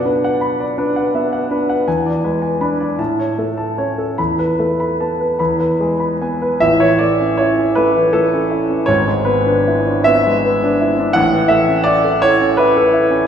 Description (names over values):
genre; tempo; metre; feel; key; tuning
classical, romantic character piece for solo piano; 48-58 BPM (dotted quarters); 6/8; rubato; A major; A4 = 440 Hz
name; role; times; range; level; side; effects
clear grand piano; solo; 0.0-13.3 s; G#1 to B5; -13 LUFS; equal; none
room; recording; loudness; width
wet recital hall reverb, RT60 1.4 s; recorded in a church or concert hall; -13 LUFS; side -8 dB against mid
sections
0.0-6.6 A section; 6.6-13.3 B section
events
none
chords
0.0 Bm; 1.9 E7; 3.0 A; 4.2 Esus4; 5.4 E; 6.6 A; 8.9 E7/G#; 11.2 A